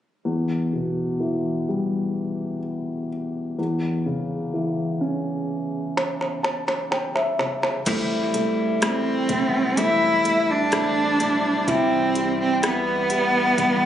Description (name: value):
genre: pop ballad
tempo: 63 BPM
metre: 4/4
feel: straight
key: E minor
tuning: A4 = 441 Hz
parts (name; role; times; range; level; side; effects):
- dark grand piano; accompaniment; 0.3-13.9 s; E2 to A5; -25 LUFS; left 1 dB; none
- organic electronic drum kit; drums; 6.0-13.8 s; crash cymbal, hi-hat, kick drum, rim click, snare drum; -25 LUFS; equal; none
- direct-recorded clean electric guitar; arpeggios; 7.9-13.9 s; A2 to E4; -27 LUFS; left 3 dB; digital delay
- sub bass with octave; bass; 7.9-13.9 s; A1 to C2; -39 LUFS; right 1 dB; none
- rich cello; melody; 8.8-13.9 s; B3 to E4; -20 LUFS; right 1 dB; none
room: little or no reverb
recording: recorded on a phone in the room, club reverb, compression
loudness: -20 LUFS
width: side -10 dB against mid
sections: 0.2-7.9 A section; 7.9-13.9 B section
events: grand piano fill 6.0-7.9; drum fill 6.0-7.9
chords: 0.2 Em; 3.6 Em6; 7.9 Am7